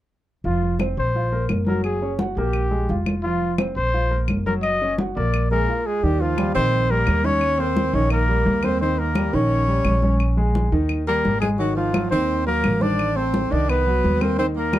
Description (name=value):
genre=Afro-Cuban jazz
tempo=172 BPM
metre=4/4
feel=straight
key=unclear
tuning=A4 = 440 Hz
part: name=warm grand piano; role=accompaniment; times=0.4-14.8 s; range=Eb3 to Gb5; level=-26 LUFS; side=right 1 dB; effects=none
part: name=upright bass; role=bass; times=0.4-14.8 s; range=F1 to Eb2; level=-23 LUFS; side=equal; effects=none
part: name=congas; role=percussion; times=0.4-14.8 s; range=none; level=-26 LUFS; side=left 1 dB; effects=none
part: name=mellow trumpet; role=melody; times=0.5-14.8 s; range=F4 to Eb5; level=-23 LUFS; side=left 2 dB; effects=none
part: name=claves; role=percussion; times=0.8-14.8 s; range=none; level=-32 LUFS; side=left 4 dB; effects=none
part: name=clear tenor saxophone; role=second line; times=5.5-14.8 s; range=F3 to D4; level=-27 LUFS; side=right 6 dB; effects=none
room=light reverb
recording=dark, warm production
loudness=-18 LUFS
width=side -14 dB against mid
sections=0.4-6.0 A section; 6.0-14.8 B section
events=break 5.7-6.0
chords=0.4 F5; 1.1 Bb5; 1.8 Gb; 2.5 Bb5; 3.2 F5; 3.9 Bb5; 4.6 Gb; 5.3 Bb5; 6.0 Eb7; 10.2 Bbm7; 10.9 Eb; 11.6 Ab9; 13.0 Adim7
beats=| 0.45 0.79 1.14 1.49 | 1.84 2.19 2.54 2.89 | 3.24 3.59 3.94 4.28 | 4.63 4.98 5.33 5.68 | 6.03 6.38 6.72 7.07 | 7.42 7.77 8.12 8.47 | 8.81 9.16 9.51 9.86 | 10.21 10.56 10.91 11.25 | 11.60 11.95 12.30 12.65 | 13.00 13.35 13.69 14.04 | 14.39 14.74